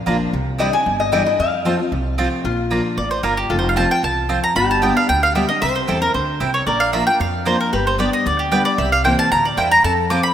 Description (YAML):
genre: bluegrass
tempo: 227 BPM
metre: 4/4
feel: straight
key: unclear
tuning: A4 = 440 Hz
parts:
  - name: lap resonator guitar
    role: second line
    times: 0.0-10.3 s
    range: F4 to Ab5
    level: -24 LUFS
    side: left 4 dB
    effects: none
  - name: picked steel-string acoustic guitar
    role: accompaniment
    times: 0.0-10.3 s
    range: E2 to G4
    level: -23 LUFS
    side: left 2 dB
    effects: none
  - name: upright bass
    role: bass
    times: 0.0-10.2 s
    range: F1 to F2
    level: -24 LUFS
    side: right 1 dB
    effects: none
  - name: mandolin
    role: stabs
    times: 0.1-10.2 s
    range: Bb3 to Bb5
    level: -25 LUFS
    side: right 5 dB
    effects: none
  - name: mandolin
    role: melody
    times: 3.0-10.3 s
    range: G4 to D6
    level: -17 LUFS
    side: right 1 dB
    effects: none
room: wet lush hall reverb, RT60 2.6 s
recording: rough home demo mix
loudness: -15 LUFS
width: side -10 dB against mid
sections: 0.0-2.4 A section; 2.4-10.3 A section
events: resonator guitar played with a steel bar solo 0.0-2.4; mandolin solo 2.4-10.3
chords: 0.3 Cadd9; 1.4 F; 2.4 Bb; 3.5 F; 4.6 G; 5.6 C; 6.7 Bb; 7.7 G; 8.8 C7